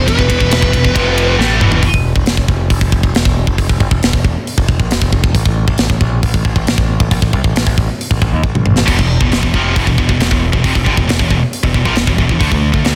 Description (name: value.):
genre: heavy metal.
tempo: 136 BPM.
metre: 4/4.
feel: straight.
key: unclear.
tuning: A4 = 440 Hz.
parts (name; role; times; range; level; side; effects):
bluesy overdriven lead guitar; melody; 0.0-1.4 s; B4; -21 LUFS; equal; distortion, digital delay.
heavy high-gain guitar; riff; 0.0-1.8, 8.9-12.9 s; E2 to A3; -20 LUFS; equal; distortion.
tight distorted guitar; riff; 0.0-1.8, 8.9-13.0 s; E2 to A3; -21 LUFS; equal; distortion.
growling picked electric bass; bass; 0.0-12.9 s; E1 to Eb2; -18 LUFS; equal; overdrive.
tight metal drum kit; drums; 0.1-13.0 s; crash cymbal, hi-hat, kick drum, ride cymbal, snare drum, toms; -16 LUFS; equal; none.
room: studio ambience.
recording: dense, heavily limited modern master.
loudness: -13 LUFS.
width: mono.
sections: 0.0-1.8 A section; 1.8-13.0 B section.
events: drum fill 1.4-1.8, 8.4-8.9.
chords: 0.0 E5; 1.0 F5; 1.4 E5; 1.8 N.C.; 8.9 E5; 12.4 D5.